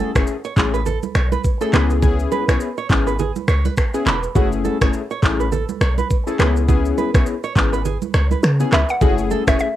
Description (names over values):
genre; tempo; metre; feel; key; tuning
afrobeats; 103 BPM; 4/4; swing 58% on 16ths; F# minor; A4 = 441 Hz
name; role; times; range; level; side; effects
warm analog keys; accompaniment; 0.0-9.7 s; A3 to G#4; -22 LUFS; left 7 dB; chorus
nylon-string guitar; riff; 0.0-9.6 s; F#4 to C#5; -25 LUFS; right 8 dB; analog delay
warm 808-style bass; bass; 0.0-9.6 s; E1 to C#3; -19 LUFS; equal; none
afro-pop drum kit; drums; 0.2-9.8 s; finger snaps, handclaps, kick drum, rim click, shaker; -19 LUFS; equal; cassette tape
congas; percussion; 0.6-9.5 s; none; -28 LUFS; right 9 dB; none
mallet-like synth pluck; melody; 8.7-9.8 s; E5 to F#5; -22 LUFS; equal; chorus, cassette tape
room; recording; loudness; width
light reverb; home recording on cassette; -16 LUFS; side -13 dB against mid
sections
0.0-9.0 A section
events
kick muted 7.8-9.0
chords
0.0 F#m7 (rootless); 4.4 F#m7; 6.4 C#m7; 9.0 F#m7